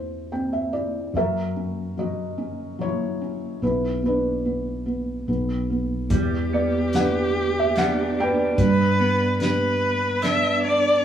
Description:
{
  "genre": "acoustic folk-pop ballad",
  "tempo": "73 BPM",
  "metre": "3/4",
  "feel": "straight",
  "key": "E minor",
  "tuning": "A4 = 440 Hz",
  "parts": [
    { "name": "felt-muted upright piano", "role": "melody", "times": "0.0-11.0 s", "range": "E3 to G5", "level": "-25 LUFS", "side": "equal", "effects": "none" },
    { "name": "sustaining fretless electric bass", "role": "bass", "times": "0.0-11.0 s", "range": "B1 to G2", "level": "-28 LUFS", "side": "equal", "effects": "none" },
    { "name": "dark viola", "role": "second line", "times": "6.1-11.0 s", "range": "G4 to E5", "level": "-23 LUFS", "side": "equal", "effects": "none" },
    { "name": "electric guitar through a small old amp", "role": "arpeggios", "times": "6.1-11.0 s", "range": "G3 to D4", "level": "-26 LUFS", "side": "right 2 dB", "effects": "harmonic tremolo" },
    { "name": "unplugged drum kit", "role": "drums", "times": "6.1-10.4 s", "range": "hi-hat, kick drum, snare drum", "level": "-26 LUFS", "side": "left 1 dB", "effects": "none" }
  ],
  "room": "light reverb",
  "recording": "band playing live in one room, small room ambience",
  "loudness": "-21 LUFS",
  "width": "side -9 dB against mid",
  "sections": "0.0-6.1 A section; 6.1-11.0 B section",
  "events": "felt piano fill 0.0-1.1",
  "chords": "0.0 Cadd9/E; 1.1 F#7; 3.6 Bsus4; 5.3 N.C.; 6.1 Em7; 8.6 G",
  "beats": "0.32 | 1.15 1.97 2.79 | 3.62 4.45 5.28 | 6.12 6.94 7.77 | 8.59 9.41 10.23"
}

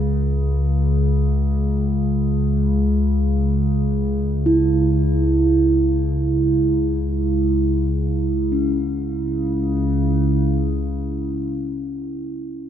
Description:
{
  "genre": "world meditative, free-time meditation music",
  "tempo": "free time",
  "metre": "none",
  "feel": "none",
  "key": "C# minor",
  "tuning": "A4 = 440 Hz",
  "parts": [
    { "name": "warbly tape-like pad", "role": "drone", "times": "0.0-11.8 s", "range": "C#2 to C#3", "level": "-19 LUFS", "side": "equal", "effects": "chorus, built-in reverb" },
    { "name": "bronze singing bowl", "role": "texture", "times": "4.5-11.8 s", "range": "C#4 to E4", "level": "-20 LUFS", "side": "right 2 dB", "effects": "none" }
  ],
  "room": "wet church reverb, RT60 3.2 s",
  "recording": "dark, warm production",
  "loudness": "-17 LUFS",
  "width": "side -9 dB against mid",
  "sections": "0.0-8.5 A section; 8.5-12.4 B section",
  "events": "none",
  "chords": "none",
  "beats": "free time"
}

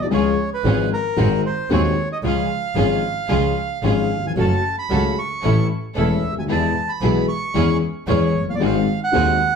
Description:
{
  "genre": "tango",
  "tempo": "113 BPM",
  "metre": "4/4",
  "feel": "rubato",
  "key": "unclear",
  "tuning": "A4 = 440 Hz",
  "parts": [
    { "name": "bandoneon", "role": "melody", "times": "0.0-9.6 s", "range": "A#4 to C#6", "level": "-23 LUFS", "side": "right 3 dB", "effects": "tape echo" },
    { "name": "dark upright piano", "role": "accompaniment", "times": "0.0-9.4 s", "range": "D#1 to A4", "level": "-20 LUFS", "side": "left 4 dB", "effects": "none" },
    { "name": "clear double bass", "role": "bass", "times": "0.0-9.4 s", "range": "E1 to E2", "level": "-22 LUFS", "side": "right 2 dB", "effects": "none" },
    { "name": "clear symphonic string section", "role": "stabs", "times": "0.1-9.4 s", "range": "B3 to A4", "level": "-29 LUFS", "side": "right 2 dB", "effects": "none" }
  ],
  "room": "wet studio reverb, RT60 0.7 s",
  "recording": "heard from further back in the room",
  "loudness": "-17 LUFS",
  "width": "side -6 dB against mid",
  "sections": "0.0-9.6 A section",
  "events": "none",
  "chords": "0.1 C#; 1.2 G#7; 2.2 C#; 4.4 F#m; 5.4 A; 6.5 E; 7.5 C#m/E; 8.6 G#7",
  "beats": "| 0.12 0.64 1.17 1.70 | 2.23 2.76 3.29 3.83 | 4.37 4.90 5.43 5.97 | 6.50 7.02 7.55 8.07 | 8.61 9.14"
}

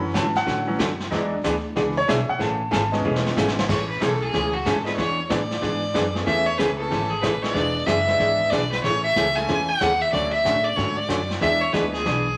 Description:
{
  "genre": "country, western swing",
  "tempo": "186 BPM",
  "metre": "4/4",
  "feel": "swing 64% on 8ths",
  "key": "A major",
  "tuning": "A4 = 444 Hz",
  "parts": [
    { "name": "archtop guitar, miked and amplified", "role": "accompaniment", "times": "0.0-12.3 s", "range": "C#3 to G#4", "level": "-28 LUFS", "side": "equal", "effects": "none" },
    { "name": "bright upright piano", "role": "accompaniment", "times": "0.0-11.9 s", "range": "E3 to B5", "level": "-30 LUFS", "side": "equal", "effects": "none" },
    { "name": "upright bass", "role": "bass", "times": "0.0-12.4 s", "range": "E1 to A2", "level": "-32 LUFS", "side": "equal", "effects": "none" },
    { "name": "vintage brush drum kit", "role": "drums", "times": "0.1-12.4 s", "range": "brushed snare drum, crash cymbal, hi-hat, kick drum, snare drum", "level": "-31 LUFS", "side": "equal", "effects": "none" },
    { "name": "clear fiddle", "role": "melody", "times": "3.7-12.4 s", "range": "F#4 to G#5", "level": "-25 LUFS", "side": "equal", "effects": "none" }
  ],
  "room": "wet large studio reverb, RT60 1.1 s",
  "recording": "vinyl crackle",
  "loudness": "-22 LUFS",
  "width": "mono",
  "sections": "0.0-3.7 A section; 3.7-12.4 B section",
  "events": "upright piano solo 0.0-3.7; drum fill 3.0-3.7",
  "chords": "0.0 Dmaj7; 1.1 E7; 2.4 Amaj7; 5.0 E7; 6.3 Amaj9; 7.6 E7; 8.8 Amaj7; 10.1 Dmaj7; 11.4 E7",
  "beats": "0.15 0.47 0.79 | 1.11 1.44 1.76 2.08 | 2.40 2.73 3.05 3.37 | 3.69 4.01 4.33 4.66 | 4.98 5.30 5.62 5.95 | 6.27 6.59 6.91 7.23 | 7.55 7.88 8.20 8.52 | 8.84 9.16 9.48 9.80 | 10.12 10.45 10.77 11.09 | 11.41 11.73 12.05"
}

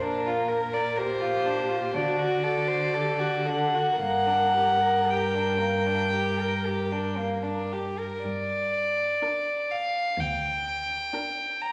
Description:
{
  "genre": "classical, slow romantic movement for string quartet",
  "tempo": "55-64 BPM",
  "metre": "4/4",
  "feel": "rubato",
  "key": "G minor",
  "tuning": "A4 = 440 Hz",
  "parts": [
    { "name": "warm violin", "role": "second line", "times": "0.0-11.7 s", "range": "Bb3 to D5", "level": "-34 LUFS", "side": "equal", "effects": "none" },
    { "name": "dark viola", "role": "accompaniment", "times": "0.0-11.7 s", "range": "D4 to Bb4", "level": "-32 LUFS", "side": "equal", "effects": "none" },
    { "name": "dark cello", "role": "bass", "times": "0.0-10.9 s", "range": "D2 to D3", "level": "-35 LUFS", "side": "equal", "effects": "none" },
    { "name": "rich violin", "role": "melody", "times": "1.0-11.7 s", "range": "C5 to Bb5", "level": "-29 LUFS", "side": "equal", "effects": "none" }
  ],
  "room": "wet recital hall reverb, RT60 1.5 s",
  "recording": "none",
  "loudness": "-26 LUFS",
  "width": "mono",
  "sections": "0.0-8.2 A section; 8.2-11.7 B section",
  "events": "none",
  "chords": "0.1 Bb; 1.9 D; 4.0 Gm",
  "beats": "| 0.05 0.98 1.94 2.93 | 3.99 5.07 6.14 7.20 | 8.25 9.22 10.18 11.13"
}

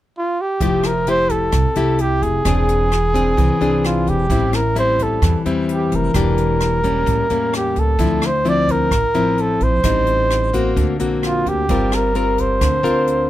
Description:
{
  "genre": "bossa nova",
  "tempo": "130 BPM",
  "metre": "4/4",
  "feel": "straight",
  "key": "F major",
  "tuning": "A4 = 439 Hz",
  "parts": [
    { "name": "mellow flugelhorn", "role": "melody", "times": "0.2-13.3 s", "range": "F4 to D5", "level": "-19 LUFS", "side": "right 2 dB", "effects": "none" },
    { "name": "nylon-string guitar", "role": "accompaniment", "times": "0.6-13.3 s", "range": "A2 to Bb4", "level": "-20 LUFS", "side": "left 3 dB", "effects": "none" },
    { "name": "upright bass", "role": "bass", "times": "0.6-13.3 s", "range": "E1 to E2", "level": "-21 LUFS", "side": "right 1 dB", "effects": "none" },
    { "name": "jazz brush drum kit", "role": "drums", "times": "0.6-13.2 s", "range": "hi-hat, kick drum, rim click", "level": "-25 LUFS", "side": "right 1 dB", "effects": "none" }
  ],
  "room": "little or no reverb",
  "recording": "close, detailed microphones",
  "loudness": "-15 LUFS",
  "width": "side -14 dB against mid",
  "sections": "0.6-13.3 A section",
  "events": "none",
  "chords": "0.0 N.C.; 0.6 Fmaj9; 2.5 Eaug7; 4.3 Am7; 6.1 Em7b5; 7.1 A7b9; 8.0 Dm9; 9.8 Am7b5; 10.8 Daug7; 11.7 Gm7",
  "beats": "0.15 | 0.61 1.07 1.53 1.99 | 2.45 2.92 3.38 3.84 | 4.30 4.76 5.22 5.68 | 6.15 6.61 7.07 7.53 | 7.99 8.46 8.92 9.38 | 9.84 10.30 10.77 11.23 | 11.69 12.15 12.61 13.08"
}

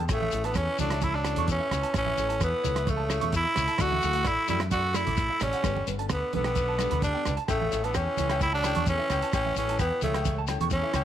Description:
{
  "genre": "highlife guitar band",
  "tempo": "130 BPM",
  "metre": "4/4",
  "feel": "straight",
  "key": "A mixolydian",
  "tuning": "A4 = 440 Hz",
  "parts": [
    { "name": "nylon-string guitar", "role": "accompaniment", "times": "0.0-11.0 s", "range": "F#3 to A4", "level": "-38 LUFS", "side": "left 14 dB", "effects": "none" },
    { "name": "electric guitar at the edge of break-up", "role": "arpeggios", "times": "0.0-11.0 s", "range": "B4 to D6", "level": "-37 LUFS", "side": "right 10 dB", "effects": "tape echo" },
    { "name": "mellow fretless electric bass", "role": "bass", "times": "0.0-11.0 s", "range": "G1 to F#2", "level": "-31 LUFS", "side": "left 1 dB", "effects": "none" },
    { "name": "growling tenor saxophone", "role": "melody", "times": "0.1-11.0 s", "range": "A3 to F#4", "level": "-28 LUFS", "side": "right 2 dB", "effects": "none" },
    { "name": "bright alto saxophone", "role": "second line", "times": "0.1-11.0 s", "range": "C#3 to A3", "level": "-38 LUFS", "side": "left 12 dB", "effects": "none" },
    { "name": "warm soul drum kit", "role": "drums", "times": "0.1-11.0 s", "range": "hi-hat, kick drum, rim click", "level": "-33 LUFS", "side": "right 2 dB", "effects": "none" },
    { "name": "shekere", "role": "percussion", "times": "0.1-11.0 s", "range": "none", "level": "-36 LUFS", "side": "left 6 dB", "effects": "none" },
    { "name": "congas", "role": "percussion", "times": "0.2-11.0 s", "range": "none", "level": "-38 LUFS", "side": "right 8 dB", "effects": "none" },
    { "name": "agogo bells", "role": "percussion", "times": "7.5-11.0 s", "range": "none", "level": "-37 LUFS", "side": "left 15 dB", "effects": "none" }
  ],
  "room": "light reverb, studio ambience",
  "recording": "1960s-style stereo with parts hard left and right",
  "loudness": "-24 LUFS",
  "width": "side -10 dB against mid",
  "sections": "0.1-11.0 A section",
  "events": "none",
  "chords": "0.1 A; 3.8 Dadd9; 5.6 Gadd9; 7.5 A",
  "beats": "| 0.10 0.56 1.02 1.49 | 1.95 2.41 2.87 3.33 | 3.79 4.26 4.72 5.18 | 5.64 6.10 6.56 7.02 | 7.49 7.95 8.41 8.87 | 9.33 9.79 10.25 10.71"
}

